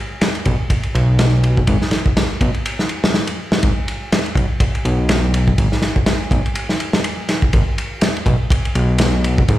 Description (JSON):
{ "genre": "breakbeat, breaks", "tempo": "123 BPM", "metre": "4/4", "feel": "swing 56% on 16ths", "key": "unclear", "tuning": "A4 = 440 Hz", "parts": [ { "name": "crunchy breakbeat drum kit", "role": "drums", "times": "0.2-9.6 s", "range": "kick drum, ride cymbal, snare drum", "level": "-16 LUFS", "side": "equal", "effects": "none" }, { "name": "fat analog bass", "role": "bass", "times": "0.5-9.6 s", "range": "G#1 to B1", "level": "-15 LUFS", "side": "equal", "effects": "tube saturation" } ], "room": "light reverb", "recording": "played on a big sound system in a bare room, stone room reverb", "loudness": "-15 LUFS", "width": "side -14 dB against mid", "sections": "0.0-9.6 A section", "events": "none", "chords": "none" }